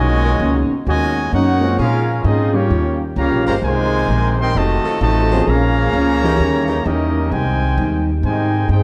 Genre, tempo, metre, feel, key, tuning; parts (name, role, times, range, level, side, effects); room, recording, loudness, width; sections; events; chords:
jazz, big band swing; 130 BPM; 4/4; swing 66% on 8ths; Ab major; A4 = 440 Hz
warm trumpet section; melody; 0.0-8.8 s; Bb3 to C6; -23 LUFS; equal
clear trombone section; second line; 0.0-8.8 s; A#2 to Ab4; -25 LUFS; equal
picked steel-string acoustic guitar; accompaniment; 0.0-8.8 s; Ab2 to Bb4; -24 LUFS; equal
upright bass; bass; 0.0-8.8 s; F1 to Bb2; -21 LUFS; equal
clear saxophone section; sustained chords; 0.2-6.8 s; D#3 to C5; -30 LUFS; equal
warm concert grand piano; accompaniment; 1.6-6.4 s; Fb3 to Ab4; -26 LUFS; equal
moderate recital hall reverb, RT60 1.9 s; dark, warm production; -17 LUFS; mono
0.0-8.8 A section
0.0 Bmaj9; 1.8 Bbm7; 2.7 Eb9; 3.6 Abmaj9; 4.5 F7b9; 5.5 Bbm7; 6.4 Eb7b9; 7.3 Abmaj7